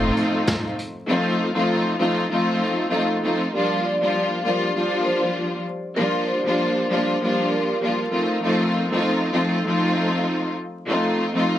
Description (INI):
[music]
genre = hip hop, boom-bap hip-hop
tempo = 98 BPM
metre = 4/4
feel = swing 54% on 16ths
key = G minor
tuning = A4 = 440 Hz
[part]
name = warm studio string section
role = accompaniment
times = 0.0-11.6 s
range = F3 to F4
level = -20 LUFS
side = left 1 dB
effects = cassette tape, high-pass filter, low-pass filter
[part]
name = vintage brush drum kit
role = drums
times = 0.2-0.9 s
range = hi-hat, snare drum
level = -26 LUFS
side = equal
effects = none
[part]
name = vibraphone with medium mallets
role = melody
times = 3.7-8.4 s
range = Bb4 to F5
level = -27 LUFS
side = right 1 dB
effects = high-pass filter, low-pass filter, ping-pong delay
[sound]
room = moderate small room reverb, RT60 0.5 s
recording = heavily compressed radio sound, vinyl crackle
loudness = -20 LUFS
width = side -12 dB against mid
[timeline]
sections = 0.0-3.5 A section; 3.5-11.6 B section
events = none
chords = 0.0 F7; 3.5 Gm7; 8.1 F7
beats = 0.47 | 1.08 1.69 2.30 2.92 | 3.53 4.14 4.75 5.37 | 5.98 6.59 7.20 7.81 | 8.43 9.04 9.65 10.26 | 10.88 11.49